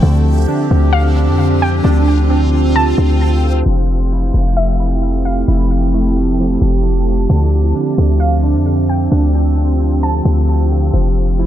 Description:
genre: hip hop.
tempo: 132 BPM.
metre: 4/4.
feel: half-time.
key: F major.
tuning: A4 = 440 Hz.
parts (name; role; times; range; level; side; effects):
warbly tape-like pad; sustained chords; 0.0-11.5 s; F3 to G4; -18 LUFS; right 2 dB; chorus, built-in reverb.
warbly lo-fi synth keys; arpeggios; 0.0-11.5 s; D3 to E4; -22 LUFS; right 2 dB; chorus, low-pass filter, analog delay.
warm 808-style bass; bass; 0.0-11.5 s; F1 to F2; -13 LUFS; left 1 dB; none.
backwards swelling texture; texture; 0.0-11.5 s; E4 to E6; -26 LUFS; right 1 dB; built-in reverb.
warbly dusty pluck; melody; 0.9-5.5, 8.2-10.9 s; E5 to A5; -23 LUFS; equal; chorus, phaser, low-pass filter, analog delay.
room: little or no reverb.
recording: echo-heavy mix, low-pass filter.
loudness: -12 LUFS.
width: side -11 dB against mid.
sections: 0.0-3.7 A section; 3.7-11.5 B section.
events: filter sweep 3.7-11.5.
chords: 0.0 Dm11; 3.7 Fmaj9; 7.3 Dm11; 10.9 Fmaj9.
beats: | 0.03 0.48 0.94 1.39 | 1.84 2.30 2.75 3.21 | 3.66 4.12 4.57 5.03 | 5.48 5.93 6.39 6.84 | 7.30 7.75 8.21 8.66 | 9.12 9.57 10.03 10.48 | 10.94 11.39.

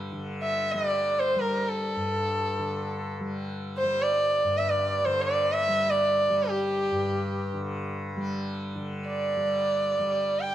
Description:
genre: indian classical, Hindustani.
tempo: free time.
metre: none.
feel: none.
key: G raga kafi.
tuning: A4 = 440 Hz.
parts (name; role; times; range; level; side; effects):
tanpura; drone; 0.0-10.5 s; G2 to G3; -32 LUFS; left 1 dB; none.
rich sarangi; melody; 0.4-10.5 s; G4 to G5; -25 LUFS; right 1 dB; none.
room: light reverb.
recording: close, detailed microphones.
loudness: -25 LUFS.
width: side -12 dB against mid.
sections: 0.1-8.8 A section; 8.8-10.5 A section.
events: none.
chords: none.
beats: free time.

